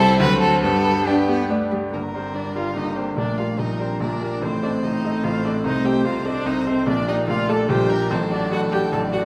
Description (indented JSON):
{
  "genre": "quick classical-period movement for piano quintet",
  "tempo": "146 BPM",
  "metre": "3/4",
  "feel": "rubato",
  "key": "G minor",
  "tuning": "A4 = 440 Hz",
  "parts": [
    { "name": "rich violin", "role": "melody", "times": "0.0-9.2 s", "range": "G4 to A5", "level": "-29 LUFS", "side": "equal", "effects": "none" },
    { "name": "rich cello", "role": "second line", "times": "0.0-9.2 s", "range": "F#3 to D4", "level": "-28 LUFS", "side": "equal", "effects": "none" },
    { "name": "rich violin", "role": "second line", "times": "0.0-9.2 s", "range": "B3 to D5", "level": "-32 LUFS", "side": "equal", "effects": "none" },
    { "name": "bright baby grand piano", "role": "accompaniment", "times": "0.0-9.2 s", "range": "G1 to Eb5", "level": "-25 LUFS", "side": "equal", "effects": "none" },
    { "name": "rich viola", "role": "accompaniment", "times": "0.0-9.2 s", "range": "Bb3 to A4", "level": "-29 LUFS", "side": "equal", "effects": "none" }
  ],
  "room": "wet recital hall reverb, RT60 1.5 s",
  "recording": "none",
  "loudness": "-21 LUFS",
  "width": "mono",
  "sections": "0.0-1.9 A section; 1.9-9.2 A section",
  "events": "none",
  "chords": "0.2 D7; 0.6 G; 1.9 Gm; 3.2 Gm/Bb; 4.4 Adim; 5.7 Adim/C; 6.9 Gm/Bb; 8.1 D/A",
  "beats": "0.20 | 0.63 1.07 1.51 | 1.94 2.36 2.77 | 3.18 3.59 4.01 | 4.42 4.83 5.25 | 5.65 6.06 6.47 | 6.88 7.29 7.70 | 8.11 8.52 8.93"
}